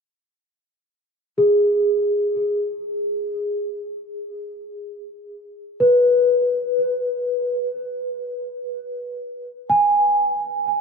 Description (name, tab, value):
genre	ambient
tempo	free time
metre	none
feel	none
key	unclear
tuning	A4 = 437 Hz
part	large celesta	arpeggios	1.4-10.8 s	G#4 to G#5	-19 LUFS	equal	diffuse ambient delay
room	wet huge ambient reverb, RT60 8.4 s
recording	dark, warm production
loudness	-18 LUFS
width	side -5 dB against mid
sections	1.4-10.8 A section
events	none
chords	none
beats	free time